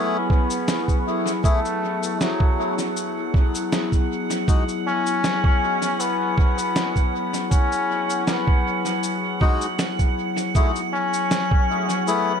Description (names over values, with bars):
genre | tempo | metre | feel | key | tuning
ambient dub | 79 BPM | 4/4 | swing 53% on 16ths | F# minor | A4 = 440 Hz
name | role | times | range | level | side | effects
trombone with straight mute | melody | 0.0-12.4 s | F#3 to C#4 | -25 LUFS | left 2 dB | dub echo
warbly tape-like pad | sustained chords | 0.0-12.4 s | F#3 to G#4 | -27 LUFS | left 3 dB | chorus, built-in reverb
melodica | stabs | 0.0-4.6, 9.4-12.3 s | G#3 to G#4 | -28 LUFS | left 3 dB | dub echo
drifting glass-harmonics texture | texture | 0.0-12.4 s | F#5 | -31 LUFS | right 6 dB | chorus, built-in reverb
electronic kick drum | drums | 0.3-11.7 s | none | -18 LUFS | right 1 dB | studio ambience
electronic cabasa and snare drum | drums | 0.5-12.2 s | none | -29 LUFS | equal | studio ambience, dub echo
room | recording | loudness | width
light reverb | echo-heavy mix | -19 LUFS | side -7 dB against mid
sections
0.0-12.4 A section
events
none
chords
0.0 F#7sus2; 4.5 Eadd9; 10.6 F#m9